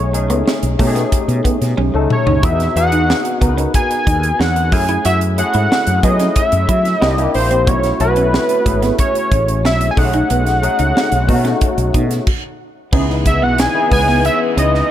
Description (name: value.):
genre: polished 1980s jazz-funk pop.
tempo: 91 BPM.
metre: 4/4.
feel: straight.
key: unclear.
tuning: A4 = 436 Hz.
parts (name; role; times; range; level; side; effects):
fat analog lead; melody; 0.0-14.9 s; B4 to G#5; -17 LUFS; equal; none.
barky tine electric piano; accompaniment; 0.0-14.9 s; A3 to B4; -20 LUFS; left 3 dB; overdrive, ensemble chorus.
mellow fretless electric bass; bass; 0.0-14.8 s; G#1 to F#3; -17 LUFS; equal; none.
clean electric guitar; riff; 0.1-14.7 s; G#3 to F#4; -24 LUFS; right 4 dB; lush chorus.
crisp fusion drum kit; drums; 0.1-14.8 s; crash cymbal, hi-hat, kick drum, snare drum, toms; -18 LUFS; equal; gated reverb.
warm studio string section; sustained chords; 12.9-14.9 s; C#3 to B3; -26 LUFS; equal; none.
room: light reverb, small room ambience.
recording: none.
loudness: -12 LUFS.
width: side -11 dB against mid.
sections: 0.0-12.9 A section; 12.9-14.9 B section.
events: drum fill 1.8-2.4; stop 12.3-12.9.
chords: 0.0 B13; 2.4 Emaj9; 4.7 F#m9; 7.0 C9; 7.7 B9sus4; 10.0 B13; 12.9 C#m7.